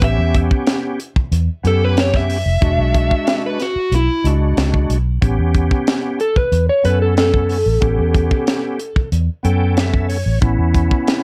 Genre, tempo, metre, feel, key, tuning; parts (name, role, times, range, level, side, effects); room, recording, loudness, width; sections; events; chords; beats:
straight-eighth soul blues; 92 BPM; 4/4; straight; A mixolydian; A4 = 441 Hz
dark smooth lead guitar; melody; 0.0-4.3 s; E4 to E5; -22 LUFS; equal; overdrive
bright tonewheel organ; accompaniment; 0.0-11.2 s; G#3 to G5; -24 LUFS; equal; chorus vibrato, stopped rotary speaker
vintage muted fingered electric bass; bass; 0.0-10.9 s; E1 to F#2; -19 LUFS; equal
tight funk drum kit; drums; 0.0-11.2 s; hi-hat, kick drum, snare drum; -21 LUFS; equal
electric slide guitar; second line; 6.2-9.1 s; A4 to C#5; -20 LUFS; equal
light reverb; -17 LUFS; mono
0.0-5.2 A section; 5.2-11.2 B section
electric slide guitar solo 5.2-11.2; tonewheel organ fill 9.1-10.4
0.0 A7 (rootless); 2.6 E7; 5.2 A7
| 0.02 0.67 1.32 1.97 | 2.62 3.27 3.92 4.57 | 5.22 5.87 6.52 7.17 | 7.82 8.47 9.12 9.77 | 10.42 11.07